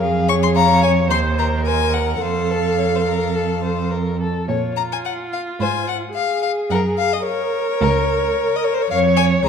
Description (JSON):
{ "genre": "quick classical-period movement for string quartet", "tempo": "108 BPM", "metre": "4/4", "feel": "rubato", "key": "unclear", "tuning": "A4 = 440 Hz", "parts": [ { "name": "warm violin", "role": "second line", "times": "0.0-9.5 s", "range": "A4 to F5", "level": "-24 LUFS", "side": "left 6 dB", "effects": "none" }, { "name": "rich viola", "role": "accompaniment", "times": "0.0-9.5 s", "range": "F4 to Db5", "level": "-22 LUFS", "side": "right 3 dB", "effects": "none" }, { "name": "clear cello", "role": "bass", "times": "0.0-9.5 s", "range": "Db2 to Bb2", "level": "-20 LUFS", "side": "right 4 dB", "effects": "none" }, { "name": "clear violin", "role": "melody", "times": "0.3-9.5 s", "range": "C5 to Db6", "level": "-22 LUFS", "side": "left 9 dB", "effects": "none" } ], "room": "wet recital hall reverb, RT60 1.5 s", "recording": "dark, warm production", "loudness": "-16 LUFS", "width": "side -7 dB against mid", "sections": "0.0-9.5 A section", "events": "none", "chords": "0.0 Db/F; 1.1 Ebm6; 2.2 F; 4.5 Bbm; 5.6 Fm/Ab; 6.7 Gb; 8.9 Db/F", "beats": "| 0.02 0.56 1.10 1.66 | 2.22 2.79 3.36 3.92 | 4.49 5.04 5.60 6.15 | 6.71 7.26 7.82 8.37 | 8.91 9.45" }